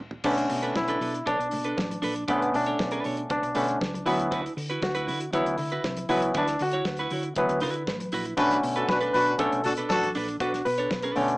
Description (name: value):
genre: disco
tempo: 118 BPM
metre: 4/4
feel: straight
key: B minor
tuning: A4 = 440 Hz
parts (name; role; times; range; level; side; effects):
- damped 70s drum kit; drums; 0.1-11.4 s; crash cymbal, hi-hat, kick drum, snare drum, toms; -35 LUFS; equal; none
- clean electric guitar; accompaniment; 0.2-11.3 s; D4 to C#5; -31 LUFS; right 2 dB; none
- overdriven clav; accompaniment; 0.2-11.4 s; D3 to B4; -26 LUFS; equal; none
- hollow-body short-scale fingered electric bass; bass; 0.2-11.4 s; A1 to D3; -36 LUFS; equal; none
- congas; percussion; 0.2-11.3 s; none; -41 LUFS; left 1 dB; none
- cowbell; percussion; 0.3-11.0 s; none; -38 LUFS; right 2 dB; none
- clear horn section; stabs; 8.4-10.1 s; D4 to B4; -24 LUFS; equal; none
room: moderate large studio reverb, RT60 0.8 s, small room ambience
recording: small speaker sound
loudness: -24 LUFS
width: side -22 dB against mid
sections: 0.3-11.4 A section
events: drum fill 0.0; band accent 0.0; clav solo 0.3-11.4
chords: 0.3 Bm7; 4.1 D69; 8.4 Bm7